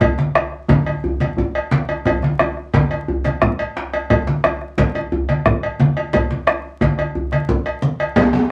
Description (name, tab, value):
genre	west african traditional, West African drum ensemble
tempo	118 BPM (dotted quarters)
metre	12/8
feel	straight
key	none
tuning	none
part	bombo	percussion	0.0-8.4 s	none	-23 LUFS	equal	none
part	congas	percussion	0.0-8.5 s	none	-21 LUFS	equal	none
part	cowbell	percussion	0.0-8.3 s	none	-25 LUFS	equal	none
part	djembe	percussion	0.0-8.5 s	none	-27 LUFS	equal	none
part	djembe	percussion	8.2-8.5 s	none	-16 LUFS	equal	none
room	wet small room reverb, RT60 0.5 s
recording	vinyl crackle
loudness	-19 LUFS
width	mono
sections	0.0-8.5 A section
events	none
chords	none